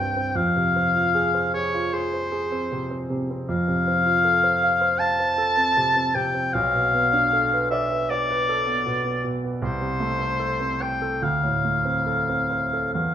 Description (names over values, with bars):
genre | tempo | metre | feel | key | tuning
classical, romantic duo for oboe and grand piano | 77 BPM | 4/4 | rubato | F minor | A4 = 441 Hz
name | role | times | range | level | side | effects
clear oboe | melody | 0.0-13.1 s | C5 to A5 | -22 LUFS | left 2 dB | none
warm grand piano | accompaniment | 0.0-13.1 s | B1 to F5 | -25 LUFS | right 2 dB | none
room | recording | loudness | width
moderate recital hall reverb, RT60 1.3 s | minimal, uncompressed stereo recording | -20 LUFS | side -9 dB against mid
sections
0.0-13.1 A section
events
none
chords
0.4 Fm; 3.5 F; 6.5 Bm7b5; 9.6 Am/C; 11.2 Dm7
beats
| 0.35 1.15 1.93 2.71 | 3.48 4.24 4.99 5.76 | 6.54 7.32 8.10 8.86 | 9.62 10.40 11.22 12.06 | 12.94